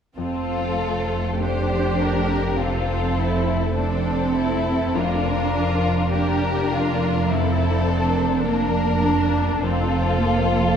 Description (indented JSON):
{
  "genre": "classical, slow romantic movement for symphony orchestra",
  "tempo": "51 BPM",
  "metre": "4/4",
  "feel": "rubato",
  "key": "F major",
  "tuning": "A4 = 440 Hz",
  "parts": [
    { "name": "rich chamber violin section", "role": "melody", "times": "0.2-10.8 s", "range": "A4 to C5", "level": "-29 LUFS", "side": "left 3 dB", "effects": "none" },
    { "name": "rich chamber violin section", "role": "second line", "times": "0.2-10.8 s", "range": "D4 to G4", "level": "-26 LUFS", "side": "left 3 dB", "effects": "none" },
    { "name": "rich studio viola section", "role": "accompaniment", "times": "0.2-10.8 s", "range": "A3 to D4", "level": "-25 LUFS", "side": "right 2 dB", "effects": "none" },
    { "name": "concert harp", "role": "arpeggios", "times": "0.2-10.8 s", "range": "F2 to C5", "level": "-28 LUFS", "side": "left 4 dB", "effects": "none" },
    { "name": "rich chamber double bass section", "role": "bass", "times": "0.2-10.8 s", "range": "F1", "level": "-26 LUFS", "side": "right 2 dB", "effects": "none" },
    { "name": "warm chamber cello section", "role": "bass", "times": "0.2-10.8 s", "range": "F2", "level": "-26 LUFS", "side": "right 2 dB", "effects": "none" }
  ],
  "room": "wet scoring stage reverb, RT60 2.2 s",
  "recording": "minimal, uncompressed stereo recording",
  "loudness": "-19 LUFS",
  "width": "side -8 dB against mid",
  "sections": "0.2-10.8 A section",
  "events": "none",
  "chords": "0.2 F"
}